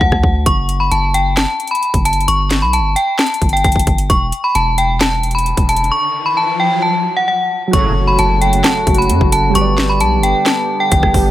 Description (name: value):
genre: hip hop, trap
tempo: 132 BPM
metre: 4/4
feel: half-time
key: F# phrygian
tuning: A4 = 440 Hz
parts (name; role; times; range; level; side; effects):
- metallic FM bell; melody; 0.0-11.3 s; F#5 to C#6; -15 LUFS; left 1 dB; chorus, tape echo
- long sustained 808-style bass; bass; 0.0-11.3 s; E1 to F#2; -17 LUFS; equal; none
- trap drum kit; drums; 0.0-11.2 s; hi-hat, kick drum, rim click, snare drum; -16 LUFS; equal; none
- riser and impact; sound effects; 5.5-9.6 s; none; -24 LUFS; left 1 dB; none
- soft electric-piano-like synth keys; accompaniment; 7.7-11.3 s; F#3 to D5; -20 LUFS; right 3 dB; chorus
- sweeping resonant pad; sustained chords; 7.7-11.3 s; C#3 to G4; -21 LUFS; equal; chorus
- analog synth brass; stabs; 7.7-7.9 s; A2 to F#3; -23 LUFS; left 2 dB; chorus
room: light reverb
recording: none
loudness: -12 LUFS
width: side -14 dB against mid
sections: 0.0-7.7 A section; 7.7-11.3 B section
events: break 0.0-0.5; riser 5.5-7.7; impact 7.7-9.6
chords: 0.5 F#madd11; 2.3 N.C.; 4.1 Esus4; 5.9 N.C.; 7.7 F#m; 9.6 G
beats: 0.01 | 0.46 0.92 1.37 1.82 | 2.28 2.73 3.19 3.64 | 4.10 4.55 5.01 5.46 | 5.92 6.37 6.83 7.28 | 7.73 8.19 8.64 9.10 | 9.55 10.01 10.46 10.92